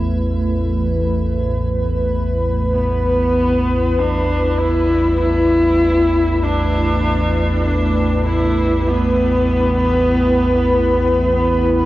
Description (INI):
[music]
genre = dark ambient drone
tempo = 49 BPM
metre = 4/4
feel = straight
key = unclear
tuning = A4 = 444 Hz
[part]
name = dark analog pad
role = sustained chords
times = 0.0-11.9 s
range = A3 to B5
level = -19 LUFS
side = equal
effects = chorus
[part]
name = deep rumbling drone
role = drone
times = 0.0-11.9 s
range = A1 to E2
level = -19 LUFS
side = equal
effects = built-in reverb, wide subtle chorus
[part]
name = icy glass pad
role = texture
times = 0.0-11.9 s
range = E4 to G5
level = -40 LUFS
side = equal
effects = chorus, built-in reverb, shimmer reverb
[part]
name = rich horsehead fiddle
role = melody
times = 2.7-11.9 s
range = B3 to E4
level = -18 LUFS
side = equal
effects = ping-pong delay
[part]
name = tubular bells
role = arpeggios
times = 6.4-11.9 s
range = none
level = barely audible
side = none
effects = none
[sound]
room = wet huge ambient reverb, RT60 8.1 s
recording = worn, warbling old tape, cassette tape, warbly pitch drift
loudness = -14 LUFS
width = side -16 dB against mid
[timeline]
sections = 0.0-4.0 A section; 4.0-11.9 B section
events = fade-out on ambient pad 0.0-4.0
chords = 0.0 Asus2